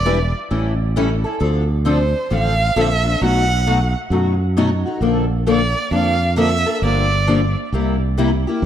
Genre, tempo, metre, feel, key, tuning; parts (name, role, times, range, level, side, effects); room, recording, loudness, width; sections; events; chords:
acoustic string swing (jazz manouche); 133 BPM; 4/4; swing 64% on 8ths; A4 = 439 Hz
rich violin; melody; 0.0-7.5 s; C5 to F#5; -22 LUFS; right 3 dB; analog delay
modern bright fingered electric bass; bass; 0.0-8.7 s; E1 to F#2; -19 LUFS; right 1 dB
picked steel-string acoustic guitar; accompaniment; 0.1-8.6 s; B2 to B4; -20 LUFS; left 3 dB; analog chorus
moderate lush hall reverb, RT60 1.5 s, small room ambience; dreamy mix soaked in reverb; -15 LUFS; side -10 dB against mid
0.0-8.7 A section
0.0 Em7; 0.5 A7; 1.4 Dm9; 3.2 B7; 5.0 Bbmaj7; 6.8 Gm7; 7.7 C7